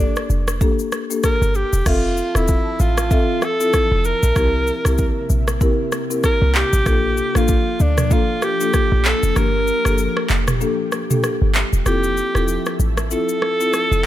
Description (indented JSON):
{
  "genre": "afrobeats",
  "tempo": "96 BPM",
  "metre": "4/4",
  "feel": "swing 58% on 16ths",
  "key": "F major",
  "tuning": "A4 = 440 Hz",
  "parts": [
    { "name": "warm alto saxophone", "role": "melody", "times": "0.0-14.1 s", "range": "D4 to Bb4", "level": "-21 LUFS", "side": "right 1 dB", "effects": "ping-pong delay" },
    { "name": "short 808-style bass", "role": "bass", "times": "0.0-14.1 s", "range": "E1 to D2", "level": "-19 LUFS", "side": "equal", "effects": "none" },
    { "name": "afro-pop drum kit", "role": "drums", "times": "0.2-14.0 s", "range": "crash cymbal, handclaps, kick drum, rim click, shaker, toms", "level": "-21 LUFS", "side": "equal", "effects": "none" },
    { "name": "marimba with medium mallets", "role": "accompaniment", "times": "0.6-13.7 s", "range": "Bb3 to E5", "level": "-23 LUFS", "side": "left 3 dB", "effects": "none" },
    { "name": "ethereal airy pad", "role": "sustained chords", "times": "2.2-14.1 s", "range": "C3 to A5", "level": "-29 LUFS", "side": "equal", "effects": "ensemble chorus, built-in reverb" }
  ],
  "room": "little or no reverb",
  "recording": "none",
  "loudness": "-16 LUFS",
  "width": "side -13 dB against mid",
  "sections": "0.0-1.9 A section; 1.9-11.9 B section; 11.9-14.1 C section",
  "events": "kick muted 9.4-11.9, 11.9-14.1",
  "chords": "0.0 Gmadd9; 1.9 Fmaj7; 4.4 C7; 6.9 Bbmaj7; 9.4 Gmadd9; 11.9 Fmaj7"
}